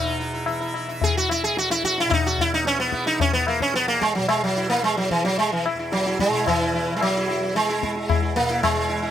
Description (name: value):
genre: indian classical, Hindustani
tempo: 110 BPM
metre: 4/4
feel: straight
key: E raga yaman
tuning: A4 = 442 Hz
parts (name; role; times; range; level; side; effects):
- sitar; melody; 0.0-9.1 s; E3 to G#4; -21 LUFS; right 1 dB; none
- tanpura; drone; 0.0-9.1 s; E2 to E3; -31 LUFS; right 2 dB; none
- tabla; percussion; 0.5-8.8 s; none; -26 LUFS; left 6 dB; none
room: light reverb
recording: close, detailed microphones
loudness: -20 LUFS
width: side -10 dB against mid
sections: 0.0-9.1 A section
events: none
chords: none